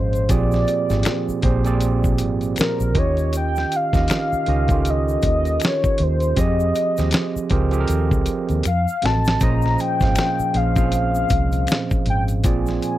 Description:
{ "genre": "R&B, neo-soul", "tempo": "79 BPM", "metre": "4/4", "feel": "swing 59% on 16ths", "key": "Bb dorian", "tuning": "A4 = 440 Hz", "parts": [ { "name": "warm velvety synth lead", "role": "melody", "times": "0.0-13.0 s", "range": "Bb4 to Bb5", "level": "-23 LUFS", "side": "left 2 dB", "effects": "chorus, slapback echo" }, { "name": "overdriven tine electric piano", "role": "accompaniment", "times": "0.0-13.0 s", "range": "Bb2 to F5", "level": "-23 LUFS", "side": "right 5 dB", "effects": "none" }, { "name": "vintage muted fingered electric bass", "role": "bass", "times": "0.0-12.8 s", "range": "Ab1 to F2", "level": "-21 LUFS", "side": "equal", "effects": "none" }, { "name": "dusty soul sampler-style drum kit", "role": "drums", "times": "0.1-13.0 s", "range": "hi-hat, kick drum, snare drum", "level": "-22 LUFS", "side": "equal", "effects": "none" }, { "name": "egg shaker and finger snaps", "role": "percussion", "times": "0.1-13.0 s", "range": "none", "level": "-34 LUFS", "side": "left 9 dB", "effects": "none" } ], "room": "little or no reverb", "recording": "dry, close 1970s-style studio recording", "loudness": "-17 LUFS", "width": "side -14 dB against mid", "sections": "0.0-13.0 A section", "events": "drum fill 8.6-9.4", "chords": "0.3 Bb13; 3.0 Eb9; 6.4 Fm9; 8.6 F7b9; 9.4 Bbm11; 12.4 Bb9" }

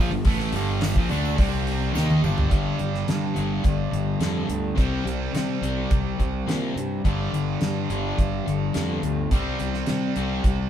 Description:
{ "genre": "classic rock", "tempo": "106 BPM", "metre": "4/4", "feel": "straight", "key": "G minor", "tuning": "A4 = 439 Hz", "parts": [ { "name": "distorted electric guitar", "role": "riff", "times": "0.0-10.7 s", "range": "G2 to Eb4", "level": "-29 LUFS", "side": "right 7 dB", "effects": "overdrive" }, { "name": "sludgy distorted guitar", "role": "riff", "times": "0.0-10.7 s", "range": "G2 to Eb4", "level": "-28 LUFS", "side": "left 6 dB", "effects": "overdrive" }, { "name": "fuzz picked electric bass", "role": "bass", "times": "0.0-10.7 s", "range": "G1 to C3", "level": "-28 LUFS", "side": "equal", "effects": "overdrive" }, { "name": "damped 70s drum kit", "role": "drums", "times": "0.2-10.6 s", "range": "hi-hat, kick drum, snare drum, toms", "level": "-24 LUFS", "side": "equal", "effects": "none" }, { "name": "tambourine", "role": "percussion", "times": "0.3-2.4 s", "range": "none", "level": "-47 LUFS", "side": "left 3 dB", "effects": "none" } ], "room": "moderate stone room reverb, RT60 1.1 s", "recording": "band playing live in one room", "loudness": "-22 LUFS", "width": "side -10 dB against mid", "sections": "0.0-2.5 A section; 2.5-10.7 B section", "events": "drum fill 1.9-2.5", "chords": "0.0 Gm; 1.4 C5; 1.9 Gm; 2.5 G5; 4.8 C5; 7.0 G5; 9.3 C5" }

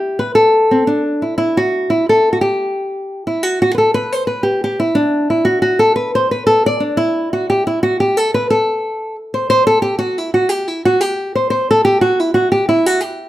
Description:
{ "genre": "celtic folk", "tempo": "118 BPM (dotted quarters)", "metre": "6/8", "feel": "straight", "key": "A dorian", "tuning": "A4 = 440 Hz", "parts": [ { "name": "nylon-string guitar", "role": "solo", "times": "0.0-13.3 s", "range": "C4 to D5", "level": "-13 LUFS", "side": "equal", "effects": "none" } ], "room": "moderate studio reverb, RT60 0.8 s", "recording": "none", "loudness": "-13 LUFS", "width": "side -14 dB against mid", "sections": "0.0-1.4 A section; 1.4-9.5 A section; 9.5-13.3 B section", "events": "none", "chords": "none" }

